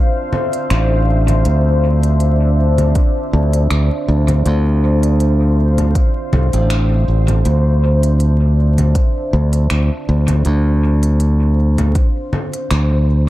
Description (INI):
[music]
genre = ambient dub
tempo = 80 BPM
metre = 4/4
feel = swing 55% on 16ths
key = D minor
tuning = A4 = 439 Hz
[part]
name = deep dark ambient pad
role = sustained chords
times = 0.0-13.3 s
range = D4 to F5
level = -21 LUFS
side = left 1 dB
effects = chorus, built-in reverb
[part]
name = organic electronic drum kit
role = drums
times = 0.3-12.9 s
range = congas, finger snaps, hi-hat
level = -24 LUFS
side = equal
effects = dub echo
[part]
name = modern bright fingered electric bass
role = bass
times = 0.7-13.3 s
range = A1 to D2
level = -12 LUFS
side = equal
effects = tube saturation
[part]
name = electronic kick drum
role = drums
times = 3.0-12.1 s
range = none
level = -14 LUFS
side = equal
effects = none
[sound]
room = light reverb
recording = vinyl crackle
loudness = -12 LUFS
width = side -16 dB against mid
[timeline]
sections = 0.0-13.3 A section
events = none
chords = 0.0 Dm9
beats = 0.70 | 1.45 2.20 2.95 3.70 | 4.45 5.20 5.95 6.70 | 7.45 8.20 8.95 9.70 | 10.45 11.20 11.95 12.70